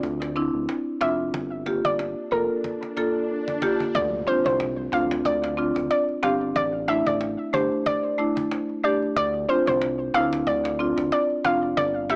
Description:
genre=dancehall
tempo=92 BPM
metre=4/4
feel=swing 56% on 16ths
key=D minor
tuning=A4 = 440 Hz
part: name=round analog bass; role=bass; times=0.0-12.2 s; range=F1 to D2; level=-37 LUFS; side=equal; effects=none
part: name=cajon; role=drums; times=0.0-12.2 s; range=none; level=-38 LUFS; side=equal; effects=none
part: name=marimba with medium mallets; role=accompaniment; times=0.4-12.2 s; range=A3 to A4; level=-28 LUFS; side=equal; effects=none
part: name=soft round pluck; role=melody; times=1.0-12.2 s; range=Bb4 to F5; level=-27 LUFS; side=equal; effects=chorus, analog delay
part: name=swell and impact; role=sound effects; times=2.1-6.6 s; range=none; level=-37 LUFS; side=equal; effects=none
room=small room reverb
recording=dry, gritty hardware recording, transformer saturation, small speaker sound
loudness=-24 LUFS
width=mono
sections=0.0-3.9 A section; 3.9-12.2 B section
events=swell 2.1-3.9; drum fill 2.6-3.9; impact 3.9-6.6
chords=0.0 Dm7; 1.3 Gm7; 3.9 Dm7; 6.6 Asus4; 9.2 Dm7

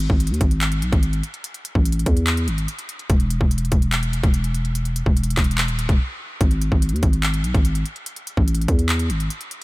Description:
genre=hip hop, trap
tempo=145 BPM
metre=4/4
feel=half-time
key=unclear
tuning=A4 = 440 Hz
part: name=growling 808-style bass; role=bass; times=0.0-9.3 s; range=D#1 to E2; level=-20 LUFS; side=equal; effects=none
part: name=trap drum kit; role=drums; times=0.0-9.6 s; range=handclaps, hi-hat, kick drum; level=-21 LUFS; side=equal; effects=none
room=little or no reverb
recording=none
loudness=-18 LUFS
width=side -20 dB against mid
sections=0.0-9.6 A section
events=break 6.0-6.4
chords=none

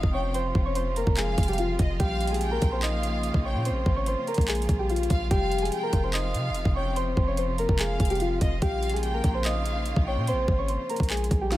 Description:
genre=hip hop, trap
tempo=145 BPM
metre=4/4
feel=half-time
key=unclear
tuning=A4 = 437 Hz
part: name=muted felt-like synth keys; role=melody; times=0.0-11.6 s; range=F4 to Eb6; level=-29 LUFS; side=left 1 dB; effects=chorus
part: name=warm studio violin section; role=second line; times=0.0-10.3 s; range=Eb5 to G5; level=-36 LUFS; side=left 1 dB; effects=tape echo
part: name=bright symphonic string section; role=sustained chords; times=0.0-11.6 s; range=C3 to F4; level=-35 LUFS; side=right 1 dB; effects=none
part: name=warm 808-style bass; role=bass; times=0.0-11.6 s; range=F1 to C3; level=-28 LUFS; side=equal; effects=none
part: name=trap drum kit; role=drums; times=0.0-11.6 s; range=handclaps, hi-hat, kick drum, snare drum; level=-27 LUFS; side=equal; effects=none
room=digital ambience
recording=none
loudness=-23 LUFS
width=side -15 dB against mid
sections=0.0-11.6 A section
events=none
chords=0.0 Fsus2; 2.0 Bbm; 5.3 Fsus2; 8.6 Bbm

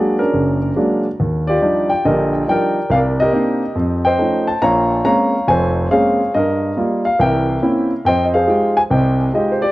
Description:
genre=solo jazz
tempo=140 BPM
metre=4/4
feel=swing 65% on 8ths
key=F minor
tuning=A4 = 440 Hz
part: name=warm concert grand piano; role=solo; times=0.0-9.7 s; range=F1 to Bb5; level=-14 LUFS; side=equal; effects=tape echo
room=moderate studio reverb, RT60 0.5 s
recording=worn, warbling old tape, cassette tape, warbly pitch drift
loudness=-14 LUFS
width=side -17 dB against mid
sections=0.0-9.7 A section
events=none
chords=0.0 Bb7alt; 1.2 Ebmaj9; 2.9 Cm9; 3.8 F7b13; 4.6 Bbm9; 6.3 Ebadd9/G; 7.2 C7b9; 8.0 Fm9

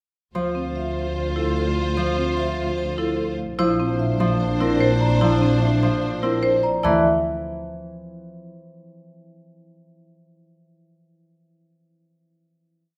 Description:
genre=classical, minimalist pattern music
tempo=148 BPM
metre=4/4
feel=straight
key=D minor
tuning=A4 = 442 Hz
part: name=Celtic harp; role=accompaniment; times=0.3-8.5 s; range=E3 to C4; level=-28 LUFS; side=equal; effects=none
part: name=vibraphone with medium mallets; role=melody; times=0.4-7.0 s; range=A4 to E5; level=-31 LUFS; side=equal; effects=none
part: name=clear clarinet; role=second line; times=0.4-6.6 s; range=D4 to F4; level=-31 LUFS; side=equal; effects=none
part: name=warm symphonic violin section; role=sustained chords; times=0.4-6.6 s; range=D4 to C5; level=-32 LUFS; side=equal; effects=none
part: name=warm symphonic double bass section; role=bass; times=0.4-7.0 s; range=Bb1 to D2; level=-27 LUFS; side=equal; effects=none
part: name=marimba with medium hard mallets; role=arpeggios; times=0.5-7.0 s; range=C4 to C5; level=-28 LUFS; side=equal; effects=none
part: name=celesta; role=arpeggios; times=5.0-7.0 s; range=A5 to Bb5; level=-31 LUFS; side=equal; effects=none
room=moderate recital hall reverb, RT60 1.4 s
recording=none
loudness=-21 LUFS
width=mono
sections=0.4-6.8 A section; 6.8-8.5 final chord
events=none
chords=0.4 Dm7; 3.6 Bbadd9; 6.8 Dm7 (rootless)

